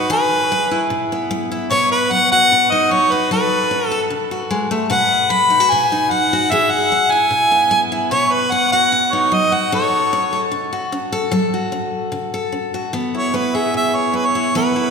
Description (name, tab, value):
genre	country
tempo	150 BPM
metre	4/4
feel	straight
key	E major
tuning	A4 = 441 Hz
part	clear harmonica	melody	0.0-10.5, 13.2-14.9 s	B4 to B5	-15 LUFS	equal	none
part	picked steel-string acoustic guitar	accompaniment	0.0-14.9 s	B2 to B4	-20 LUFS	left 1 dB	none
room	wet church reverb, RT60 3.4 s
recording	recorded in a church or concert hall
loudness	-14 LUFS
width	side -5 dB against mid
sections	0.0-11.3 A section; 11.3-12.9 B section; 12.9-14.9 C section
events	none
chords	0.1 E; 1.7 B; 3.3 F#m; 4.9 B; 6.5 E; 8.1 B; 9.7 F#m; 12.9 E